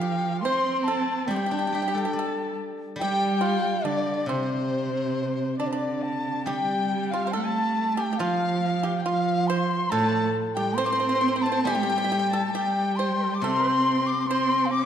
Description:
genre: chinese traditional, Chinese chamber ensemble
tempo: 69 BPM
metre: 2/4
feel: rubato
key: C zhi mode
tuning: A4 = 443 Hz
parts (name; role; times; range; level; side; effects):
- mellow hollow large dizi; melody; 0.0-14.9 s; C5 to D6; -27 LUFS; left 2 dB; none
- pipa; second line; 0.0-14.9 s; C4 to C5; -32 LUFS; right 5 dB; none
- rich cello; second line; 0.0-14.9 s; C3 to D4; -28 LUFS; right 3 dB; none
- warm erhu; second line; 0.0-14.9 s; C5 to D6; -33 LUFS; left 6 dB; none
- steel-string zither; accompaniment; 1.3-14.9 s; A2 to D5; -32 LUFS; left 2 dB; none
room: wet concert hall reverb, RT60 2.4 s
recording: dark, warm production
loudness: -23 LUFS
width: side -9 dB against mid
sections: 0.0-6.5 A section; 6.5-14.9 B section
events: none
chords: none

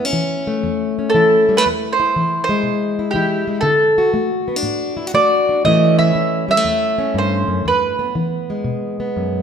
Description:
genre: acoustic country blues, solo or duo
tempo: 119 BPM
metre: 4/4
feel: swing 68% on 8ths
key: unclear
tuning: A4 = 440 Hz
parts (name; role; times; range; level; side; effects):
- mandolin; melody; 0.0-8.1 s; G4 to A5; -16 LUFS; right 2 dB; none
- fingerpicked plugged-in steel-string acoustic guitar; accompaniment; 0.0-9.4 s; E2 to F#4; -18 LUFS; left 2 dB; none
room: moderate recital hall reverb, RT60 1.8 s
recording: none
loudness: -15 LUFS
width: side -7 dB against mid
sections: 0.0-9.4 A section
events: none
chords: 0.0 A; 1.6 E; 3.6 D; 5.6 A; 7.6 E

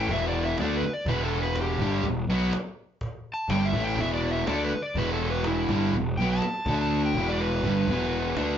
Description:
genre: blues rock power trio and southern rock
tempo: 123 BPM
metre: 4/4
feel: straight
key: E minor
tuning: A4 = 440 Hz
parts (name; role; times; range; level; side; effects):
- overdriven slide guitar; melody; 0.0-8.6 s; E4 to A5; -30 LUFS; left 1 dB; none
- overdriven electric guitar; riff; 0.0-8.6 s; E2 to D4; -26 LUFS; equal; none
- fuzz picked electric bass; bass; 0.0-8.6 s; E1 to D2; -30 LUFS; equal; overdrive
- cajon; drums; 0.1-8.5 s; none; -36 LUFS; equal; none
room: moderate studio reverb, RT60 0.7 s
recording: band playing live in one room, nothing above 7.5 kHz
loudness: -24 LUFS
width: side -9 dB against mid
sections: 0.0-8.6 A section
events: kick and snare drop out 7.4-7.9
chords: 0.0 Em; 6.7 D5; 7.2 Em

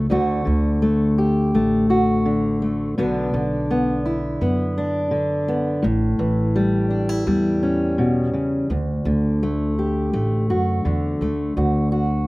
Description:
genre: acoustic folk duo or small band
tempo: 84 BPM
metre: 4/4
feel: straight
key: D major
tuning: A4 = 440 Hz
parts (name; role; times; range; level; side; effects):
- fingerpicked steel-string acoustic guitar; accompaniment; 0.0-12.3 s; D2 to G4; -19 LUFS; left 1 dB; none
- upright bass; bass; 0.0-12.3 s; A1 to F#2; -24 LUFS; right 1 dB; none
room: little or no reverb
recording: recorded outdoors, with no room sound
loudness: -18 LUFS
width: side -21 dB against mid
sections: 0.1-11.6 A section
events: none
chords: 0.1 D; 3.0 Bm; 5.8 A7; 8.7 D

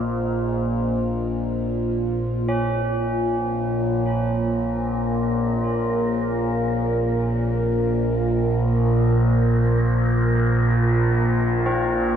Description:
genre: dark ambient drone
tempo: free time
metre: none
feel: none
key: Bb minor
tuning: A4 = 440 Hz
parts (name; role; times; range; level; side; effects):
- dark analog pad; sustained chords; 0.0-12.2 s; Bb3 to Eb5; -24 LUFS; left 1 dB; chorus, phaser
- overtone-sweeping drone; drone; 0.0-12.2 s; Bb1 to Bb2; -22 LUFS; right 1 dB; chorus, built-in reverb
- wind-like tuned noise texture; texture; 0.0-12.2 s; Bb4 to F5; -37 LUFS; left 1 dB; built-in reverb, lush chorus
- tubular bells; arpeggios; 2.5-12.2 s; C4 to Db4; -30 LUFS; right 3 dB; diffuse ambient delay
room: moderate lush hall reverb, RT60 2.6 s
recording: dreamy mix soaked in reverb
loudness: -19 LUFS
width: side -8 dB against mid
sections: 0.0-2.5 A section; 2.5-12.2 B section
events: fade-in on synth texture 2.5-12.2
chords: 0.0 Bb5; 2.5 Bbm

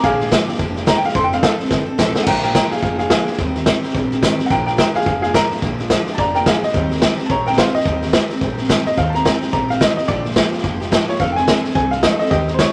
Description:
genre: rockabilly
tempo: 215 BPM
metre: 4/4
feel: swing 59% on 8ths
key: Bb major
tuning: A4 = 440 Hz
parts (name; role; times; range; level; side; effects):
- bright upright piano; melody; 0.0-12.7 s; G4 to C6; -21 LUFS; equal; none
- picked steel-string acoustic guitar; accompaniment; 0.0-12.7 s; Bb2 to Bb4; -25 LUFS; equal; none
- upright bass; bass; 0.0-12.6 s; F1 to Eb2; -29 LUFS; equal; none
- vintage drum kit; drums; 0.0-12.7 s; crash cymbal, hi-hat, kick drum, snare drum; -20 LUFS; equal; none
room: light reverb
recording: none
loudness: -17 LUFS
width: mono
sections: 0.0-2.3 A section; 2.3-12.7 B section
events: upright piano solo 0.0-2.3; drum fill 1.7-2.3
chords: 0.0 Bb6; 1.2 F6; 2.3 Bb6; 3.4 Eb6; 4.5 Bb6; 6.7 Eb6; 10.1 Bb6; 11.2 F6

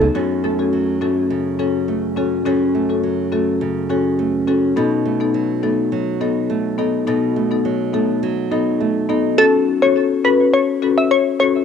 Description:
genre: dancehall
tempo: 104 BPM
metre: 4/4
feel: straight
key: unclear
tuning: A4 = 436 Hz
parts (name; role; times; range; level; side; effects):
- marimba with medium mallets; accompaniment; 0.0-11.6 s; B3 to A4; -18 LUFS; left 7 dB; cassette tape
- nylon-string guitar; arpeggios; 0.0-9.9 s; F#2 to D#4; -21 LUFS; right 9 dB; cassette tape
- glassy wavetable pluck; melody; 9.4-11.5 s; A4 to E5; -16 LUFS; left 1 dB; chorus, cassette tape, analog delay
room: light reverb, small room ambience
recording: home recording on cassette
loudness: -16 LUFS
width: side -7 dB against mid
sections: 0.1-9.4 A section; 9.4-11.6 B section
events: none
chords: 0.1 F#m; 4.8 B7; 9.4 F#m

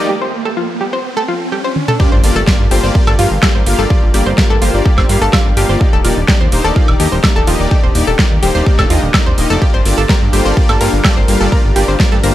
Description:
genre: progressive house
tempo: 126 BPM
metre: 4/4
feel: straight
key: G minor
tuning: A4 = 440 Hz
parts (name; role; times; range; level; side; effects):
- lush unison pad; sustained chords; 0.0-12.3 s; G3 to Bb4; -22 LUFS; left 1 dB; chorus, phaser, sidechain pumping
- soft supersaw; stabs; 0.0-12.3 s; Bb3 to F5; -18 LUFS; left 2 dB; sidechain pumping, digital delay
- riser and impact; sound effects; 0.0-3.9 s; none; -22 LUFS; right 2 dB; none
- analog pluck; arpeggios; 0.1-12.3 s; F4 to C5; -19 LUFS; equal; chorus, sidechain pumping, digital delay
- big-room dance drum kit; drums; 1.8-12.3 s; hi-hat, snare drum, toms, woodblock; -18 LUFS; right 1 dB; overdrive
- electronic kick drum; drums; 2.0-12.1 s; none; -12 LUFS; equal; overdrive
- fat analog bass; bass; 2.1-12.3 s; Eb1 to G2; -16 LUFS; equal; sidechain pumping
room: light reverb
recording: none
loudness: -10 LUFS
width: side -14 dB against mid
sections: 0.0-2.0 A section; 2.0-12.3 B section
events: build-up 0.0-2.0; riser 0.0-2.0; filter sweep on supersaw synth 0.0-2.0; break 0.1-2.0; drum fill 1.8; drop 2.0-12.3; impact 2.0-3.9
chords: 0.0 N.C.; 2.0 Gm7; 5.8 Ebmaj7; 9.6 Gm7

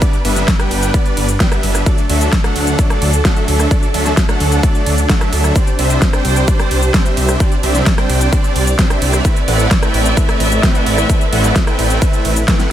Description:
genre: EDM, festival progressive house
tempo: 130 BPM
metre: 4/4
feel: straight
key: unclear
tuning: A4 = 436 Hz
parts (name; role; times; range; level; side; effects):
- dark chamber string section; sustained chords; 0.0-12.7 s; A3 to E5; -21 LUFS; right 1 dB; sidechain pumping
- supersaw chords; riff; 0.0-12.7 s; F#3 to G5; -19 LUFS; right 1 dB; sidechain pumping, tape echo
- big-room dance drum kit; drums; 0.0-12.7 s; hi-hat, ride cymbal, rim click, shaker, snare drum; -20 LUFS; equal; overdrive
- electronic kick drum; drums; 0.0-12.6 s; none; -14 LUFS; equal; overdrive
- detuned saw bass; bass; 0.2-12.4 s; G1 to D2; -16 LUFS; equal; tube saturation, sidechain pumping
room: little or no reverb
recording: none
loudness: -11 LUFS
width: side -11 dB against mid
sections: 0.0-12.7 A section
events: none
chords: 0.0 G; 1.9 D; 5.6 Csus2; 9.2 Amadd9

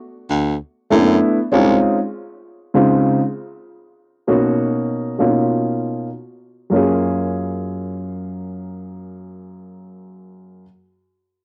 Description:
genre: hip hop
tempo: 98 BPM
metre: 4/4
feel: swing 57% on 16ths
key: F# major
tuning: A4 = 440 Hz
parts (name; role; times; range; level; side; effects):
- bright baritone saxophone; bass; 0.3-1.8 s; B#1 to F#2; -20 LUFS; equal; tube saturation
- dark baby grand piano; accompaniment; 0.9-10.7 s; F#2 to G#4; -19 LUFS; equal; none
room: light reverb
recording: home recording on cassette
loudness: -18 LUFS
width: mono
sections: 0.0-6.7 A section; 6.7-9.2 B section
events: none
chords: 0.0 Gmaj9 (rootless); 1.8 C#maj9; 4.3 Bmaj9; 6.7 F#maj9

